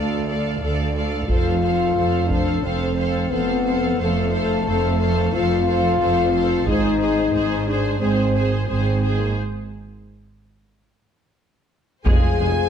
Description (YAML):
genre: cinematic, epic orchestral film score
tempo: 89 BPM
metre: 4/4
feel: straight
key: unclear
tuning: A4 = 440 Hz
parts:
  - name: clear symphonic violin section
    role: melody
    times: 0.0-12.7 s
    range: B#4 to F5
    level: -34 LUFS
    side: left 1 dB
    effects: none
  - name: rich symphonic violin section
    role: second line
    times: 0.0-12.7 s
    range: C5 to Ab5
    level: -30 LUFS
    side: left 1 dB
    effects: none
  - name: rich symphonic viola section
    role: accompaniment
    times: 0.0-12.5 s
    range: Ab3 to A4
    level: -29 LUFS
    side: right 1 dB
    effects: none
  - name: warm French horn section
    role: sustained chords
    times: 0.0-12.7 s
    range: A3 to Ab4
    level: -22 LUFS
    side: left 4 dB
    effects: none
  - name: rich symphonic double bass section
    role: bass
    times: 0.0-12.5 s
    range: F1 to D2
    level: -25 LUFS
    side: right 3 dB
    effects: none
  - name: warm symphonic cello section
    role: bass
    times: 0.0-12.5 s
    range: D2 to G#2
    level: -25 LUFS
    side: right 3 dB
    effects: none
  - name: taiko ensemble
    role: drums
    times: 1.3-2.6, 6.7-8.0, 12.1-12.7 s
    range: none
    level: -21 LUFS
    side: equal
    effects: none
  - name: mellow trombone section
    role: sustained chords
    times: 12.1-12.7 s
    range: F3 to C4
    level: -33 LUFS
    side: right 4 dB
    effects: none
  - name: mellow woodwind section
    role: sustained chords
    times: 12.1-12.7 s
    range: Ab3 to F5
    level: -33 LUFS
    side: right 4 dB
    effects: none
  - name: warm tuba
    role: bass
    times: 12.1-12.5 s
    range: F1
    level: -28 LUFS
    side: right 4 dB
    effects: none
  - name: timpani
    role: percussion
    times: 12.1-12.7 s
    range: F2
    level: -24 LUFS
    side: equal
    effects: none
room: moderate recital hall reverb, RT60 1.4 s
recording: dark, warm production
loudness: -18 LUFS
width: side -8 dB against mid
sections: 0.0-12.1 A section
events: break 9.4-12.1; drum fill 11.1-12.1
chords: 0.0 Dm; 1.3 F; 6.7 G#; 12.1 Fm